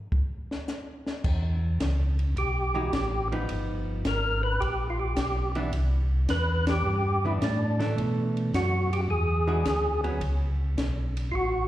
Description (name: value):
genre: soul jazz organ trio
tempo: 107 BPM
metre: 4/4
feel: swing 69% on 8ths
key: unclear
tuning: A4 = 439 Hz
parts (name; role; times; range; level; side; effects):
- compact cocktail drum kit; drums; 0.1-11.5 s; crash cymbal, hi-hat, kick drum, ride cymbal, snare drum; -33 LUFS; equal; none
- mellow tonewheel organ; bass; 1.2-11.7 s; G1 to B2; -27 LUFS; equal; slow rotary speaker
- percussive tonewheel organ; melody; 2.4-11.7 s; D4 to B4; -28 LUFS; equal; slow rotary speaker, overdrive, chorus vibrato, slapback echo
- hollow-body jazz guitar; accompaniment; 2.7-10.2 s; E3 to F#4; -32 LUFS; right 2 dB; slapback echo
room: moderate club reverb, RT60 0.9 s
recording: live gig heard through the venue's PA, recital hall reverb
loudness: -25 LUFS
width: side -14 dB against mid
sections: 0.0-1.2 A section; 1.2-11.7 B section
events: drum solo 0.0-1.2; band accent 6.6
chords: 0.0 N.C.; 1.2 Emaj7(no3); 3.5 G7alt; 5.7 Cmaj9; 8.0 Bm7; 9.1 E9; 10.2 A69